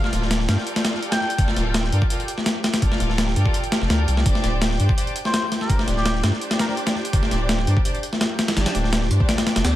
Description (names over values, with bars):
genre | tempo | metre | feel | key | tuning
drum and bass, jungle | 167 BPM | 4/4 | straight | unclear | A4 = 440 Hz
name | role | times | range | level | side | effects
trumpet with cup mute | melody | 0.0-1.5, 5.3-6.7 s | G4 to G5 | -30 LUFS | equal | dub echo
rich studio string section | sustained chords | 0.0-9.8 s | D4 to D5 | -30 LUFS | equal | none
saturated sub bass | bass | 0.0-9.8 s | D1 to G2 | -21 LUFS | equal | none
breakbeat sampler-style drum kit | drums | 0.0-9.7 s | hi-hat, kick drum, snare drum | -21 LUFS | equal | overdrive
twinkling granular texture | texture | 0.0-9.8 s | G4 to G5 | -33 LUFS | right 3 dB | built-in reverb
room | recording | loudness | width
little or no reverb | none | -18 LUFS | side -14 dB against mid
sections
0.0-9.8 A section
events
none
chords
0.0 Gm9; 4.3 Csus2